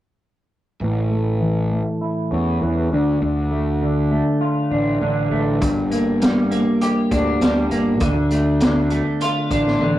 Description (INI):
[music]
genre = psychedelic rock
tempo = 100 BPM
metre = 4/4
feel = straight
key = unclear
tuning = A4 = 440 Hz
[part]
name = clean electric guitar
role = riff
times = 0.8-10.0 s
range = G2 to G4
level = -19 LUFS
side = equal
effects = rotary speaker, low-pass filter
[part]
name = fuzz picked electric bass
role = bass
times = 0.8-10.0 s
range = G1 to E2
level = -23 LUFS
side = equal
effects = overdrive
[part]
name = vintage drum kit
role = drums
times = 5.6-9.9 s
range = hi-hat, kick drum, snare drum, toms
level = -22 LUFS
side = equal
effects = none
[sound]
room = wet small room reverb, RT60 0.5 s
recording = rough rehearsal-room recording, warm saturation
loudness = -17 LUFS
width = side -14 dB against mid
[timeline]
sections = 0.8-10.0 A section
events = filter sweep on clean electric guitar 0.8-10.0; drum fill 9.8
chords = 0.8 A; 2.9 Dm; 5.6 Gm; 8.0 Dm